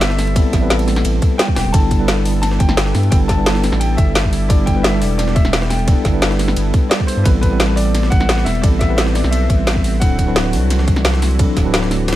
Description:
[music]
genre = liquid drum and bass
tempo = 174 BPM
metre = 4/4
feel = straight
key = G major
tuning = A4 = 441 Hz
[part]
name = bright concert grand piano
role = melody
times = 0.0-12.2 s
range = B4 to A5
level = -25 LUFS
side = equal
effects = digital delay
[part]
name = mellow tine electric piano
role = accompaniment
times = 0.0-12.2 s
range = F#3 to B4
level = -21 LUFS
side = equal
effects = medium stereo tremolo, digital delay
[part]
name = warm analog pad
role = sustained chords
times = 0.0-12.2 s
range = E3 to A4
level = -27 LUFS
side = right 1 dB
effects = chorus, sidechain pumping
[part]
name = saturated sub bass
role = bass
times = 0.0-12.2 s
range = D1 to G2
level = -18 LUFS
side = equal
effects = tube saturation
[part]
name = drum and bass drum kit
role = drums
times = 0.0-12.2 s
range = hi-hat, ride cymbal, snare drum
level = -21 LUFS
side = equal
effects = none
[part]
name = jungle sampler-style drum kit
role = drums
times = 0.0-12.2 s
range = hi-hat, ride cymbal, snare drum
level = -26 LUFS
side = equal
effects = high-pass filter on cymbals, high-pass filter on snare, high-pass filter on hats, high-pass filter on room
[part]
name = electronic kick drum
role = drums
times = 0.4-11.6 s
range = none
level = -15 LUFS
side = equal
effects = none
[sound]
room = little or no reverb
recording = none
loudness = -13 LUFS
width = side -14 dB against mid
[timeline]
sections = 0.0-12.2 A section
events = none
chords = 0.0 Am9; 1.7 G69; 7.3 Am9; 10.0 D9

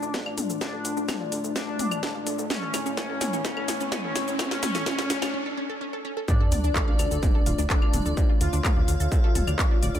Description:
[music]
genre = melodic techno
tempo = 127 BPM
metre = 4/4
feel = straight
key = D harmonic minor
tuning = A4 = 440 Hz
[part]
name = resonant sweep polysynth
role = melody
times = 0.0-10.0 s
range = C#4 to F4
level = -31 LUFS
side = left 2 dB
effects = chorus, sidechain pumping, digital delay
[part]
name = dark analog pad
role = sustained chords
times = 0.0-10.0 s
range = A3 to D5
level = -36 LUFS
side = left 2 dB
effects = lush chorus, sidechain pumping
[part]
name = wide unison pluck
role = arpeggios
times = 0.0-10.0 s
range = A3 to F6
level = -35 LUFS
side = right 1 dB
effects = flanger, sidechain pumping, ping-pong delay
[part]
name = fat analog bass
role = bass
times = 0.0-10.0 s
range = D1 to D2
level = -29 LUFS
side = equal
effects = sidechain pumping, high-pass filter
[part]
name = techno drum kit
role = drums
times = 0.0-10.0 s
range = claves, handclaps, hi-hat, shaker, snare drum, toms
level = -30 LUFS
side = left 1 dB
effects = sidechain pumping on toms, small room ambience, sidechain pumping on perc, sidechain pumping on hats
[part]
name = riser and sub drop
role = sound effects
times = 1.5-8.2 s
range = none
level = -34 LUFS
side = right 1 dB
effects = none
[part]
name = electronic kick drum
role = drums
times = 0.1-9.7 s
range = none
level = -25 LUFS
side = equal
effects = distortion, high-pass filter on kick, small room ambience
[part]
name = airy dreamy lead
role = second line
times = 6.3-10.0 s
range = D5 to F5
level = -36 LUFS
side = left 1 dB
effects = chorus, sidechain pumping, ping-pong delay
[sound]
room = light reverb, digital ambience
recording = none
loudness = -23 LUFS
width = side -10 dB against mid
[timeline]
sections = 0.0-6.3 A section; 6.3-10.0 B section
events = build-up 0.0-6.3; drum fill 0.0-5.3; filter sweep on synth arpeggio sound 0.0-6.3; riser 1.5-5.3; break 5.3-6.3; drop 6.3-10.0; impact 6.3-8.2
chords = 0.0 Dm; 2.5 A; 6.3 Dm

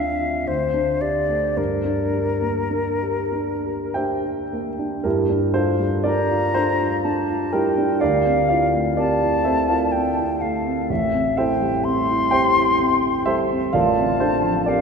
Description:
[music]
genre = classical, impressionist duo for flute and grand piano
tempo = 46-66 BPM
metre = 3/4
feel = rubato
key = G dorian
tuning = A4 = 440 Hz
[part]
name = concert flute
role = melody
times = 0.0-14.8 s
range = Bb4 to C6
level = -23 LUFS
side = left 3 dB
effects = none
[part]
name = dark baby grand piano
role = accompaniment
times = 0.0-14.8 s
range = A1 to G5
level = -20 LUFS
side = right 1 dB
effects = none
[sound]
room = wet cathedral reverb, RT60 4.3 s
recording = recorded in a church or concert hall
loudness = -18 LUFS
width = side -5 dB against mid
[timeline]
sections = 0.0-5.0 A section; 5.0-14.8 A section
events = none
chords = 0.5 D7sus4; 1.6 Gm; 5.0 Gm7; 8.0 Dm9; 10.9 Am7; 13.7 Dm7/A

